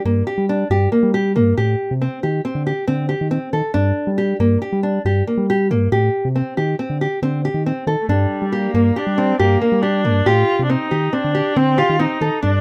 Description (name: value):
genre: contemporary instrumental, chamber music in an uneven meter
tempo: 138 BPM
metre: 5/4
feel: straight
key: unclear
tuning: A4 = 440 Hz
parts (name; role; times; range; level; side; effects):
- nylon-string guitar; arpeggios; 0.1-12.6 s; Bb3 to A4; -21 LUFS; equal; none
- sub bass with octave; bass; 0.1-12.6 s; G2 to G3; -22 LUFS; equal; none
- warm viola; second line; 8.0-12.6 s; G3 to F4; -23 LUFS; equal; none
room: light reverb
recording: close, detailed microphones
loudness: -18 LUFS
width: mono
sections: 0.0-12.6 A section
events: none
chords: 0.0 Gm; 1.6 Am7b5; 3.8 Gm; 5.9 Am7b5; 8.1 Gm; 10.3 Am7b5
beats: 0.27 0.71 1.14 | 1.58 2.01 2.45 2.88 3.32 | 3.75 4.19 4.62 5.06 5.49 | 5.92 6.36 6.79 7.23 7.66 | 8.10 8.53 8.96 9.40 9.83 | 10.27 10.70 11.13 11.57 12.00 | 12.44